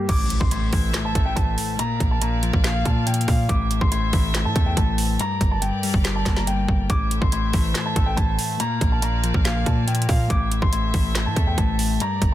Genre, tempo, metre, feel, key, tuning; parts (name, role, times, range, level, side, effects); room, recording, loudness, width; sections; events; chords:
hip hop, trap; 141 BPM; 4/4; half-time; A phrygian; A4 = 437 Hz
dark baby grand piano; melody; 0.0-12.3 s; F5 to D6; -28 LUFS; right 2 dB; low-pass filter, ping-pong delay
clean electric guitar; accompaniment; 0.0-12.3 s; G2 to Bb3; -26 LUFS; left 5 dB; spring reverb, low-pass filter
dark chamber string section; sustained chords; 0.1-12.3 s; G3 to F5; -32 LUFS; equal
hard-hitting 808-style bass; bass; 0.1-12.3 s; G1 to Bb2; -24 LUFS; right 1 dB
trap drum kit; drums; 0.1-12.3 s; crash cymbal, handclaps, hi-hat, kick drum, snare drum; -22 LUFS; right 1 dB
impact; sound effects; 0.2-1.8 s; -31 LUFS; right 1 dB
little or no reverb; dense, heavily limited modern master; -19 LUFS; side -13 dB against mid
0.1-12.3 A section
impact 0.1-1.8
0.1 Am; 1.8 Bb; 3.5 Am; 5.2 Gm; 6.9 Am; 8.6 Bb; 10.3 Am